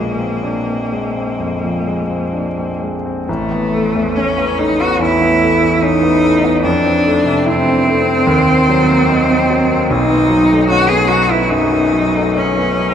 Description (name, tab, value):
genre	classical, impressionist duo for cello and grand piano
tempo	62-77 BPM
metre	4/4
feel	rubato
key	unclear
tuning	A4 = 440 Hz
part	bright cello	melody	0.0-12.9 s	A3 to G#4	-14 LUFS	equal	none
part	warm concert grand piano	accompaniment	0.0-12.9 s	A1 to E4	-16 LUFS	equal	none
room	wet cathedral reverb, RT60 7.2 s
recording	in a vast, echoing space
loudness	-12 LUFS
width	side -8 dB against mid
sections	0.0-3.3 A section; 3.3-12.9 B section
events	none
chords	0.0 Bb9; 3.3 Aadd9; 6.6 Fmaj7; 8.3 D#m6; 9.9 B9